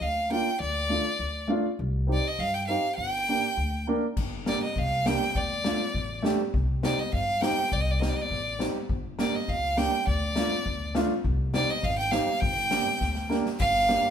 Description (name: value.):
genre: klezmer.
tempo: 102 BPM.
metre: 2/4.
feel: straight.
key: G minor.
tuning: A4 = 439 Hz.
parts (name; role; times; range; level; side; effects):
bright violin; melody; 0.0-14.1 s; D5 to G5; -27 LUFS; right 1 dB; none.
upright bass; bass; 0.0-14.0 s; G1 to G2; -31 LUFS; equal; none.
dark upright piano; accompaniment; 0.3-14.0 s; A3 to Bb4; -30 LUFS; right 2 dB; none.
street-band drum kit; drums; 4.2-14.0 s; crash cymbal, kick drum, snare drum; -32 LUFS; left 2 dB; none.
room: moderate stone room reverb, RT60 1.1 s.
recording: band playing live in one room.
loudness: -24 LUFS.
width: side -8 dB against mid.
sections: 0.0-4.2 A section; 4.2-13.6 A section.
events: drum fill 13.0-13.6.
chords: 0.0 Gm; 0.6 Dm; 1.8 Cm; 3.0 Gm; 5.4 Dm; 6.5 Cm; 8.9 Gm; 10.1 Dm; 11.3 Cm; 12.4 Gm.